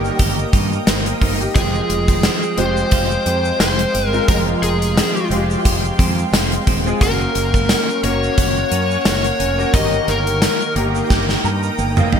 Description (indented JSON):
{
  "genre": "1980s-style pop",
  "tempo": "88 BPM",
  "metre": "4/4",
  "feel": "swing 55% on 16ths",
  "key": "F minor",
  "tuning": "A4 = 438 Hz",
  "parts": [
    { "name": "clear concert grand piano", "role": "accompaniment", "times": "0.0-12.2 s", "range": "G3 to Bb5", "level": "-24 LUFS", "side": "left 2 dB", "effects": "ensemble chorus" },
    { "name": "shimmering ambient pad", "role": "sustained chords", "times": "0.0-12.2 s", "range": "Ab3 to Eb6", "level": "-26 LUFS", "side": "right 1 dB", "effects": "chorus, built-in reverb" },
    { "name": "clean electric guitar", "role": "riff", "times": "0.0-12.2 s", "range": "Eb3 to G4", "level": "-24 LUFS", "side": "right 3 dB", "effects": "lush chorus, ping-pong delay" },
    { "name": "fretless electric bass", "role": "bass", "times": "0.0-12.2 s", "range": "Eb1 to G2", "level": "-22 LUFS", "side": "equal", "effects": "none" },
    { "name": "tube shaker", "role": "percussion", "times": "0.0-12.1 s", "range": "none", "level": "-37 LUFS", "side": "right 8 dB", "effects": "none" },
    { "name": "gated 80s drum kit", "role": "drums", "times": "0.2-12.2 s", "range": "hi-hat, kick drum, snare drum, tambourine, toms", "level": "-17 LUFS", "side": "equal", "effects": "none" },
    { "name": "lead guitar through a small cranked amp", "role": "melody", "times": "1.6-10.7 s", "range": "Ab4 to Eb5", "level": "-21 LUFS", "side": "left 2 dB", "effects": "overdrive, ping-pong delay" }
  ],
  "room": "moderate lush hall reverb, RT60 2.2 s",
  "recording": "bright 1980s-style digital production",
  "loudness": "-14 LUFS",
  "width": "side -7 dB against mid",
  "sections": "0.0-12.2 A section",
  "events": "drum fill 11.1-12.2; grand piano fill 11.1-12.2",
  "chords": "0.0 Eb/G; 1.6 Fmadd9; 7.0 Gb; 9.7 Eb/G"
}